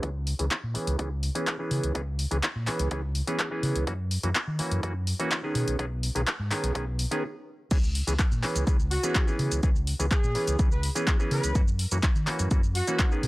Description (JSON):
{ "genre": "filtered disco house", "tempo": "125 BPM", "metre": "4/4", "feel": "straight", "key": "C# dorian", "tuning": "A4 = 436 Hz", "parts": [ { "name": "mellow clav", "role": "accompaniment", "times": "0.0-13.3 s", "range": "D#3 to G#4", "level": "-31 LUFS", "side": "right 1 dB", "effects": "phaser, vintage 12-bit sampler grit, sidechain pumping, low-pass filter" }, { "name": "fingered electric bass", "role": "bass", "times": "0.0-13.3 s", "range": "B1 to D#3", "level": "-28 LUFS", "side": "equal", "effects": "sidechain pumping, low-pass filter" }, { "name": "electronic kick drum", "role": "drums", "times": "0.0-13.1 s", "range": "none", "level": "-25 LUFS", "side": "equal", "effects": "overdrive, high-pass filter on kick" }, { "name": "punchy analog drum machine", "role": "drums", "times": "0.0-13.3 s", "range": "crash cymbal, handclaps, hi-hat, shaker", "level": "-31 LUFS", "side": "equal", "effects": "overdrive, low-pass filter on snare, sidechain pumping on hats, low-pass filter on hats, sidechain pumping on cymbals, low-pass filter on cymbals, sidechain pumping on perc, low-pass filter on perc" }, { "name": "warm horn section", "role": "melody", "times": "8.9-13.1 s", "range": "F#4 to B4", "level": "-33 LUFS", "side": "equal", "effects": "vintage 12-bit sampler grit, sidechain pumping, low-pass filter" } ], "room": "little or no reverb", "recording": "dry, gritty hardware recording", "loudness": "-24 LUFS", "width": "side -20 dB against mid", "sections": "0.0-7.7 A section; 7.7-13.3 B section", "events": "build-up 0.0-7.7; filter sweep 0.0-7.7; stop 7.2-7.7; drop 7.7-13.3", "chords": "0.0 C#m7; 3.9 F#7; 5.6 B69; 7.7 C#m7; 11.6 F#7" }